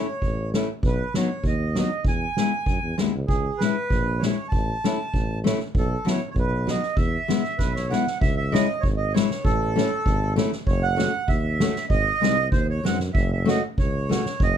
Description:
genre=alpine folk, alpine dance band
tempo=98 BPM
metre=2/4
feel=straight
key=E major, C# minor from 8.2 s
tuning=A4 = 437 Hz
part: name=accordion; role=melody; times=0.0-14.6 s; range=G#4 to A5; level=-27 LUFS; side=right 4 dB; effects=none
part: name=fingerpicked steel-string acoustic guitar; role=accompaniment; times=0.0-14.2 s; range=F#3 to F#4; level=-24 LUFS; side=left 6 dB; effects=none
part: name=mellow tuba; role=bass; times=0.2-14.6 s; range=F#1 to F#2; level=-27 LUFS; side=equal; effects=none
part: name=soft-mallet drum kit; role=drums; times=0.2-14.5 s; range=kick drum, snare drum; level=-25 LUFS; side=right 1 dB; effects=none
room=light reverb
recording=none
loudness=-21 LUFS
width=side -9 dB against mid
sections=0.0-8.2 A section; 8.2-14.6 B section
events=drum fill 7.6-8.2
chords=0.0 A; 0.8 B; 2.0 E; 3.3 C#m; 4.5 A; 5.7 B7sus4; 6.3 B; 7.0 E; 8.2 C#m; 9.4 A; 10.7 F#m; 11.9 G#; 13.1 F#m

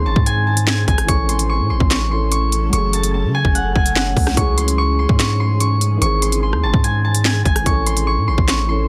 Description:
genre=hip hop, drill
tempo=146 BPM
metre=4/4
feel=half-time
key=unclear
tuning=A4 = 441 Hz
part: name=Celtic harp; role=melody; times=0.0-8.9 s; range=F#5 to C#6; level=-24 LUFS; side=equal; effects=digital delay
part: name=dark concert grand piano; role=accompaniment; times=0.0-8.9 s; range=D#3 to A4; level=-28 LUFS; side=equal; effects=none
part: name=granular cloud pad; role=sustained chords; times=0.0-8.9 s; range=D#3 to A4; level=-30 LUFS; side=equal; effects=built-in reverb
part: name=long sustained 808-style bass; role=bass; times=0.0-8.9 s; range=F#1 to C#3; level=-21 LUFS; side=equal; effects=none
part: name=drill drum kit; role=drums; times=0.2-8.6 s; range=handclaps, hi-hat, kick drum, rim click, snare drum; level=-20 LUFS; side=equal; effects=none
room=little or no reverb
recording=dense, heavily limited modern master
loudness=-17 LUFS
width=mono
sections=0.0-8.9 A section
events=none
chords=0.0 G#; 1.1 A; 2.7 F#madd9; 4.4 C#m; 6.0 G#; 7.7 A

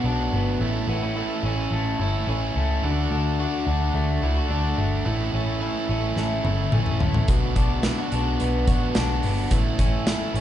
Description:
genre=jangly indie pop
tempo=108 BPM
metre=4/4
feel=straight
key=unclear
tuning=A4 = 439 Hz
part: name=biting overdriven guitar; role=accompaniment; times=0.0-10.4 s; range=A2 to F#4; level=-28 LUFS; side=right 3 dB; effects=none
part: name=electric guitar through a small old amp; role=arpeggios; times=0.0-10.4 s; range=A2 to F#4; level=-28 LUFS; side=left 3 dB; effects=none
part: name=vintage muted picked electric bass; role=bass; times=0.0-10.4 s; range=G1 to D2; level=-25 LUFS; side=equal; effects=none
part: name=big rock drum kit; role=drums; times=6.2-10.4 s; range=hi-hat, kick drum, snare drum, toms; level=-23 LUFS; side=equal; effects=none
room=moderate recital hall reverb, RT60 1.4 s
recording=recorded in a church or concert hall, nothing above 10.5 kHz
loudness=-21 LUFS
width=side -11 dB against mid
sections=0.0-10.4 A section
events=drum fill 6.2-7.3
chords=0.0 Bm; 0.6 A; 2.8 D; 5.1 A; 7.3 Bm; 9.5 A

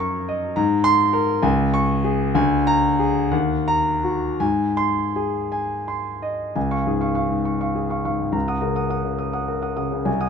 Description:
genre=classical, romantic character piece for solo piano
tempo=53-72 BPM (dotted quarters)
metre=6/8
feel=rubato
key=Db major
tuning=A4 = 436 Hz
part: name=warm concert grand piano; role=solo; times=0.0-10.3 s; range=C2 to Eb6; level=-19 LUFS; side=left 1 dB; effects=none
room=light reverb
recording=close, detailed microphones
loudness=-19 LUFS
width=side -6 dB against mid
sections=0.0-6.6 A section; 6.6-10.3 B section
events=none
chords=0.0 Ebm7/Gb; 0.6 Abadd9; 1.4 Db5; 2.4 Bb7/D; 3.3 Ebm; 4.4 Ab; 6.6 Db; 8.3 Ebm7/Db

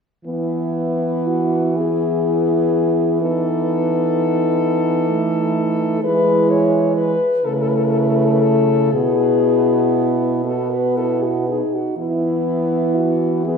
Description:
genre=classical, lyrical piece for horn quartet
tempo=39-43 BPM (dotted quarters)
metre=6/8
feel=rubato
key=E major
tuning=A4 = 442 Hz
part: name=mellow French horn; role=melody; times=0.3-13.6 s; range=E4 to C#5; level=-20 LUFS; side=left 5 dB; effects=none
part: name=mellow French horn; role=second line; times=0.3-13.6 s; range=D#4 to F#4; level=-23 LUFS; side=right 8 dB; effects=none
part: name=warm French horn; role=accompaniment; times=0.3-13.6 s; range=G#3 to B3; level=-22 LUFS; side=left 2 dB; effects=none
part: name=warm French horn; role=bass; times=0.3-13.6 s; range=B2 to E3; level=-22 LUFS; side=right 2 dB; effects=none
room=wet recital hall reverb, RT60 1.4 s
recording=recorded in a church or concert hall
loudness=-16 LUFS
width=side -6 dB against mid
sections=0.3-13.6 A section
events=none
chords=0.3 E; 3.2 B7/E; 6.0 E; 7.4 A/C#; 8.9 E/B; 12.0 E5

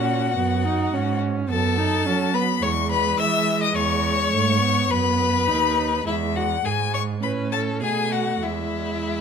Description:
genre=quick classical-period movement for string quartet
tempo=104 BPM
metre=4/4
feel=rubato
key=E major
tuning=A4 = 440 Hz
part: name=clear violin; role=melody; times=0.0-9.2 s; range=E5 to E6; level=-24 LUFS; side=left 10 dB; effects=none
part: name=rich violin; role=second line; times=0.0-9.2 s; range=E4 to E5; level=-28 LUFS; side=left 3 dB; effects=none
part: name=dark viola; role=accompaniment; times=0.0-9.2 s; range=G#3 to D#4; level=-26 LUFS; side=right 5 dB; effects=none
part: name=rich cello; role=bass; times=0.0-9.2 s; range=D#2 to F#3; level=-26 LUFS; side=right 5 dB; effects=none
room=moderate recital hall reverb, RT60 1.5 s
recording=close, detailed microphones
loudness=-20 LUFS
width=side -6 dB against mid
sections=0.0-9.2 A section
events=none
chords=0.0 B; 1.5 B7/F#; 2.6 E; 3.8 B7/E; 6.1 E; 7.2 A; 7.8 B5; 8.4 E

